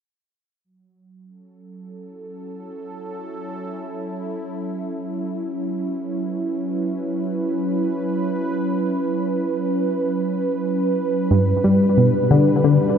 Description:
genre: ambient, sequencer-driven space music.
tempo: free time.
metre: none.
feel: none.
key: F# phrygian.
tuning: A4 = 440 Hz.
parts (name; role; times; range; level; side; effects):
sweeping resonant pad; sustained chords; 0.6-13.0 s; F#3 to B4; -22 LUFS; right 1 dB; chorus.
tight sequenced synth; riff; 11.3-12.8 s; G2 to G3; -15 LUFS; left 1 dB; chorus, analog delay.
room: wet cathedral reverb, RT60 5.3 s.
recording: in a vast, echoing space.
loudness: -19 LUFS.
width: side -8 dB against mid.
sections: 0.6-13.0 A section.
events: fade-in on analog synth pad 0.6-13.0.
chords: 0.6 F#m7; 11.3 Gmaj7.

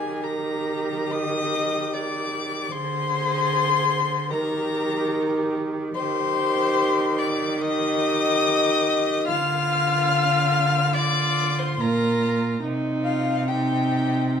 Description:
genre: classical, slow romantic movement for string quartet.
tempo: 73 BPM.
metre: 4/4.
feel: uneven beats, rubato.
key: Eb major from 6.0 s.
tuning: A4 = 439 Hz.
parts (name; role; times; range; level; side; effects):
dark violin; melody; 0.0-14.4 s; F5 to F6; -25 LUFS; left 6 dB; none.
dark violin; second line; 0.0-14.4 s; F4 to F5; -27 LUFS; left 3 dB; none.
dark viola; accompaniment; 0.0-14.4 s; Eb4 to Ab4; -28 LUFS; right 2 dB; none.
warm cello; bass; 0.0-14.4 s; Bb2 to Eb3; -26 LUFS; right 2 dB; none.
room: moderate stone room reverb, RT60 1.3 s.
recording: small room ambience.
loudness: -20 LUFS.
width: side -7 dB against mid.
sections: 0.0-14.4 A section.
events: none.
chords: 0.0 Eb; 2.7 Ab; 4.3 Eb; 9.3 Bb/D; 12.6 Cm.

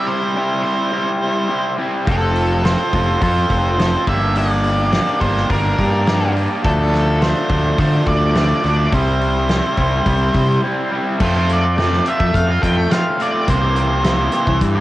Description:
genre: indie rock.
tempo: 105 BPM.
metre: 4/4.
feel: straight.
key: unclear.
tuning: A4 = 443 Hz.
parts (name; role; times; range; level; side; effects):
octave-fuzz lead guitar; melody; 0.0-14.6 s; A4 to G5; -21 LUFS; right 2 dB; distortion, cassette tape.
raw garage guitar; riff; 0.0-14.8 s; E3 to A4; -19 LUFS; equal; overdrive, cassette tape.
fuzz fingered electric bass; bass; 2.1-14.8 s; F1 to D3; -18 LUFS; equal; overdrive.
loose indie drum kit; drums; 2.1-14.8 s; crash cymbal, hi-hat, kick drum, snare drum; -22 LUFS; equal; none.
room: small room ambience.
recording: home recording on cassette.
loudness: -14 LUFS.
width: side -16 dB against mid.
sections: 0.0-11.2 A section; 11.2-14.8 B section.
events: break 10.6-11.2.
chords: 0.0 C; 2.1 F; 4.1 Gm; 6.6 Dm; 8.9 C; 11.2 F; 13.5 C7.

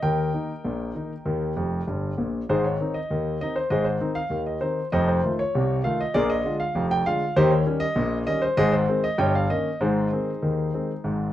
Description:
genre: ragtime piano.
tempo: 98 BPM.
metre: 2/4.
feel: straight.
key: Ab major.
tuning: A4 = 440 Hz.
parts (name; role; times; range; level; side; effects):
warm concert grand piano; solo; 0.0-11.3 s; F1 to G5; -22 LUFS; equal; none.
room: moderate club reverb, RT60 0.6 s.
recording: none.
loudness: -22 LUFS.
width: side -12 dB against mid.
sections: 0.0-11.3 A section.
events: grand piano fill 1.6-2.5.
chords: 0.0 Eb; 2.5 Ab; 4.9 F7; 6.1 Bb7; 7.4 Eb7; 8.6 Ab; 9.2 Eb7/G; 9.8 Ab.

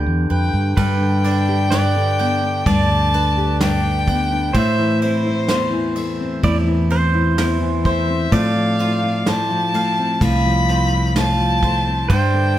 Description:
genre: acoustic folk duo or small band.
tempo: 64 BPM.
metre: 4/4.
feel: straight.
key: unclear.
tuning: A4 = 440 Hz.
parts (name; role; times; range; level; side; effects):
nylon-string guitar; accompaniment; 0.0-12.6 s; E2 to G4; -21 LUFS; left 3 dB; none.
bowl-back mandolin; arpeggios; 0.0-12.6 s; G3 to G5; -27 LUFS; right 3 dB; none.
fretless electric bass; bass; 0.0-12.6 s; C2 to A2; -20 LUFS; equal; none.
rich fiddle; melody; 0.3-12.6 s; C5 to B5; -22 LUFS; left 1 dB; none.
pedal steel guitar; second line; 0.8-12.6 s; B4 to D5; -25 LUFS; right 4 dB; none.
soft brush drum kit; drums; 0.8-12.3 s; crash cymbal, kick drum, ride cymbal, snare drum; -25 LUFS; right 1 dB; none.
room: light reverb.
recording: none.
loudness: -15 LUFS.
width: side -12 dB against mid.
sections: 0.8-12.6 A section.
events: none.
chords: 0.0 Gadd9; 0.8 G; 4.5 Am; 8.3 F/A.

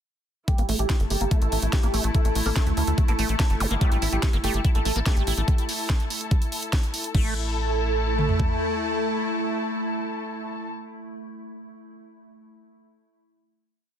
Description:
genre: psychedelic trance.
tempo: 144 BPM.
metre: 4/4.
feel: straight.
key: unclear.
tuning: A4 = 441 Hz.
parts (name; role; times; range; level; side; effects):
wide unison lead; melody; 0.5-10.6 s; G4 to A4; -31 LUFS; right 1 dB; phaser, sidechain pumping, ping-pong delay.
evolving wavetable pad; sustained chords; 1.1-10.6 s; A3 to E4; -32 LUFS; right 2 dB; chorus, built-in reverb, sidechain pumping.
liquid acid bass; riff; 0.5-7.3 s; A3 to E4; -32 LUFS; moving between left 5 dB and right 3 dB; chorus, auto-pan, sidechain pumping, ping-pong delay.
drum and bass drum kit; drums; 0.5-8.5 s; kick drum, toms; -22 LUFS; equal; overdrive.
drum and bass drum kit; drums; 0.5-7.2 s; crash cymbal, hi-hat, snare drum; -30 LUFS; right 1 dB; overdrive.
muted studio string section; texture; 0.5-10.7 s; E4 to A5; -33 LUFS; left 4 dB; sidechain pumping.
tight sequencer bass; bass; 0.6-8.4 s; G1 to D2; -26 LUFS; equal; tube saturation.
zap; sound effects; 3.6-3.7 s; none; -33 LUFS; equal; none.
room: little or no reverb.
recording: dense, heavily limited modern master.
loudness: -22 LUFS.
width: side -9 dB against mid.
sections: 0.5-7.1 groove; 7.1-10.5 final chord.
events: filter sweep on acid bass 0.5-5.5.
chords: 0.5 A5.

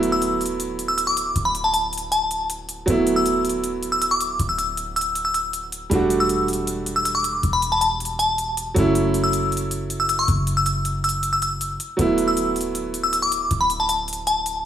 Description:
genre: future bass.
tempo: 158 BPM.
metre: 4/4.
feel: half-time.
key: D major.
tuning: A4 = 440 Hz.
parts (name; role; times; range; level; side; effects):
clear grand piano; accompaniment; 0.0-14.7 s; F#3 to F#4; -23 LUFS; right 3 dB; digital delay.
warm 808-style bass; bass; 0.0-14.7 s; D1 to F#1; -28 LUFS; equal; none.
electronic hi-hat; drums; 0.0-14.5 s; none; -30 LUFS; left 1 dB; none.
glassy synth bell; melody; 0.1-14.6 s; A5 to E6; -22 LUFS; left 1 dB; chorus, digital delay.
room: moderate digital room reverb, RT60 1.0 s.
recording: small room ambience.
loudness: -19 LUFS.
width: side -10 dB against mid.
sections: 0.0-14.7 A section.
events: none.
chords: 0.0 D69; 5.9 Em11; 8.8 F#m7; 12.0 D69.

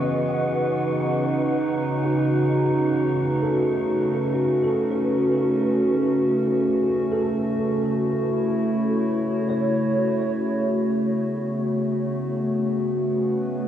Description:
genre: ambient.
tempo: 64 BPM.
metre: 4/4.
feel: straight.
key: unclear.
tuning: A4 = 440 Hz.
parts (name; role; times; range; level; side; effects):
warbly tape-like pad; sustained chords; 0.0-13.7 s; E3 to C#5; -22 LUFS; equal; chorus, built-in reverb.
mellow tine electric piano; arpeggios; 0.0-13.7 s; F#4 to F#5; -27 LUFS; equal; ensemble chorus, diffuse ambient delay.
bowed-like drone; drone; 0.0-13.7 s; C#3; -29 LUFS; right 2 dB; built-in reverb.
wind-like tuned noise texture; texture; 0.0-10.5 s; C#6; -42 LUFS; left 1 dB; built-in reverb.
room: wet huge ambient reverb, RT60 8.7 s.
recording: dreamy mix soaked in reverb, cassette tape, small room ambience.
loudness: -20 LUFS.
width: side -10 dB against mid.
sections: 0.0-10.4 A section; 10.4-13.7 B section.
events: fade-out on synth texture 0.0-10.4.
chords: 0.0 C#m11; 3.0 B9; 6.7 F#m7; 10.4 D6 (rootless).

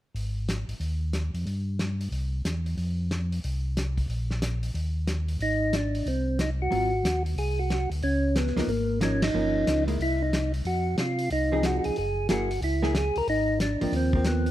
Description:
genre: soul jazz organ trio.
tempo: 183 BPM.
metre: 4/4.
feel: swing 64% on 8ths.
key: Ab major.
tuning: A4 = 440 Hz.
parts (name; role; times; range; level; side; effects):
mellow tonewheel organ; bass; 0.1-14.5 s; Gb1 to C3; -28 LUFS; equal; chorus vibrato, slow rotary speaker.
warm soul drum kit; drums; 0.2-14.5 s; hi-hat, kick drum, ride cymbal, snare drum; -32 LUFS; equal; none.
percussive tonewheel organ; melody; 5.4-14.5 s; Bb3 to Bb4; -27 LUFS; right 1 dB; slow rotary speaker.
hollow-body jazz guitar; accompaniment; 6.7-14.5 s; F3 to Ab4; -30 LUFS; equal; none.
room: light reverb.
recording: none.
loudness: -24 LUFS.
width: side -13 dB against mid.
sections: 0.2-5.4 A section; 5.4-14.5 B section.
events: band accent 9.2.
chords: 0.2 Ab5; 1.5 N.C.; 2.1 C; 2.8 F5; 4.1 N.C.; 5.4 Ab; 6.7 Ab6; 8.0 Db69; 9.3 Gm7b5; 10.0 Cm; 10.7 Fm7; 12.0 Gb9; 13.3 Ab69.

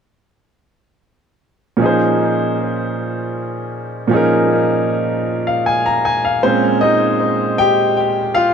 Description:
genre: R&B.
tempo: 52 BPM (dotted quarters).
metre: 6/8.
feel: straight.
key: Bb dorian.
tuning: A4 = 440 Hz.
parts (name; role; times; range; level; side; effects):
bright grand piano; solo; 1.8-8.5 s; Bb2 to Bb5; -14 LUFS; equal; tape echo.
room: moderate plate reverb, RT60 2.7 s.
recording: echo-heavy mix.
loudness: -14 LUFS.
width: side -6 dB against mid.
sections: 1.8-6.4 A section; 6.4-8.5 B section.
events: grand piano solo 6.4-8.5.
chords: 1.8 Bbm11.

